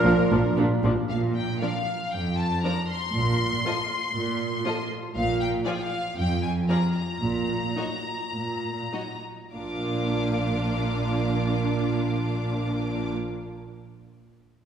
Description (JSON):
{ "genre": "quick classical-period movement for symphony orchestra", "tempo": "94-122 BPM", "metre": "4/4", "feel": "rubato", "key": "Bb major", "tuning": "A4 = 440 Hz", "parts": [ { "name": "rich studio violin section", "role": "melody", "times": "0.0-13.1 s", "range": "Bb4 to D6", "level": "-31 LUFS", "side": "left 4 dB", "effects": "none" }, { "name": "bright studio violin section", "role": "second line", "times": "0.0-13.1 s", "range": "F4 to F5", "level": "-37 LUFS", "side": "left 3 dB", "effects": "none" }, { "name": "silver concert flute", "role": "second line", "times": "0.0-0.6 s", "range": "F4", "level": "-31 LUFS", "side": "left 1 dB", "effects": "none" }, { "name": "mellow bassoon", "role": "accompaniment", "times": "0.0-0.8 s", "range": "D4", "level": "-31 LUFS", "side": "right 5 dB", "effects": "none" }, { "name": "dark French horn section", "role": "sustained chords", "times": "0.0-0.8 s", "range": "F3 to D4", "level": "-27 LUFS", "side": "left 1 dB", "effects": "none" }, { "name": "mellow trumpet", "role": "stabs", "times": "0.0-0.6 s", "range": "Bb4", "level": "-31 LUFS", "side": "right 2 dB", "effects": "none" }, { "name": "rich studio cello section", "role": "bass", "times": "0.0-13.1 s", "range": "F2 to Bb2", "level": "-28 LUFS", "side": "right 2 dB", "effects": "none" }, { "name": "rich studio double bass section", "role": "bass", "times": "0.0-13.1 s", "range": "Bb1", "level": "-29 LUFS", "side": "right 2 dB", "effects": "none" }, { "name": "warm studio viola section", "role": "accompaniment", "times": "0.1-13.1 s", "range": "F3 to F4", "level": "-30 LUFS", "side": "equal", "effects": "none" } ], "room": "wet scoring stage reverb, RT60 2.1 s", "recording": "heard from further back in the room", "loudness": "-24 LUFS", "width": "side -8 dB against mid", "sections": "0.0-1.1 A section; 1.1-9.5 B section; 9.5-14.5 C section", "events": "slowing down 4.2-9.5", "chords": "0.0 Bb; 1.1 Bb5; 3.1 F5/Bb; 7.2 N.C.; 9.5 Bb" }